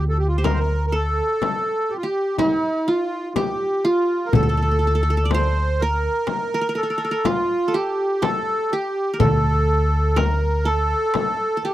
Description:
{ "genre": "Arabic maqam ensemble", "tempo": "123 BPM (eighths)", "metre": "10/8", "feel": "straight", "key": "unclear", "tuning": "A4 = 440 Hz", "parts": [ { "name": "accordion", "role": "melody", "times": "0.0-11.7 s", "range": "E4-50c to D5", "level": "-22 LUFS", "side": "right 1 dB", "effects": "light tremolo tuning" }, { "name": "qanun", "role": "second line", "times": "0.0-11.7 s", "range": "E4-50c to D5", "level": "-26 LUFS", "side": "right 1 dB", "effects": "none" }, { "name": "upright bass", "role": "bass", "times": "0.0-10.9 s", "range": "D2", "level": "-20 LUFS", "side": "equal", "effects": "none" }, { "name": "darbuka", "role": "percussion", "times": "0.4-11.7 s", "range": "none", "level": "-25 LUFS", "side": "right 1 dB", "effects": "none" }, { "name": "frame drum", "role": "percussion", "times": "0.5-11.4 s", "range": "none", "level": "-25 LUFS", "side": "left 8 dB", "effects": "none" } ], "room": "little or no reverb", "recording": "dry, close 1970s-style studio recording", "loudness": "-18 LUFS", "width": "side -14 dB against mid", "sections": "0.0-11.7 A section", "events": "none", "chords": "none" }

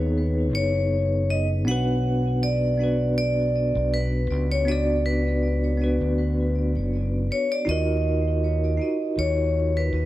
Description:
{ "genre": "trip hop", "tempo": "80 BPM", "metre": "4/4", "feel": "swing 54% on 16ths", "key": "unclear", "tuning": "A4 = 442 Hz", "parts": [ { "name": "vibraphone with hard mallets", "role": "melody", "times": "0.0-10.1 s", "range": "B4 to F#5", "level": "-27 LUFS", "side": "equal", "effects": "tape echo" }, { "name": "bell-like tine electric piano", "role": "accompaniment", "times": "0.0-10.1 s", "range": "B3 to D5", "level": "-26 LUFS", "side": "equal", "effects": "tremolo, tape echo" }, { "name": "overdriven fingered electric bass", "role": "bass", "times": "0.0-10.1 s", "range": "F#1 to D#2", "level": "-24 LUFS", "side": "equal", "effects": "none" } ], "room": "light reverb, small room ambience", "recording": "vinyl crackle", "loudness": "-21 LUFS", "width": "side -15 dB against mid", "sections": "0.0-10.1 A section", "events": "none", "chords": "0.0 G#m; 1.7 Bm; 7.7 D#madd9" }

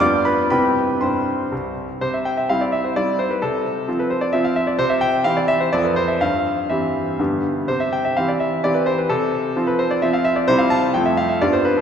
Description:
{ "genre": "classical-period piano sonatina", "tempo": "117-132 BPM", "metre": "3/4", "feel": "rubato", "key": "C major", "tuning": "A4 = 435 Hz", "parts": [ { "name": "bright concert grand piano", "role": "solo", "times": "0.0-11.8 s", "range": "C2 to D6", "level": "-17 LUFS", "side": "equal", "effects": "none" } ], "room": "wet church reverb, RT60 3.1 s", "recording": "recorded in a church or concert hall", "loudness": "-17 LUFS", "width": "side -8 dB against mid", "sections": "0.0-2.0 A section; 2.0-11.8 A section", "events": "none", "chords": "0.0 G7; 0.5 C; 3.4 F/C; 4.8 C; 5.7 F; 6.2 C/G; 7.2 G; 7.7 C; 9.1 F/C; 10.5 C; 10.9 F" }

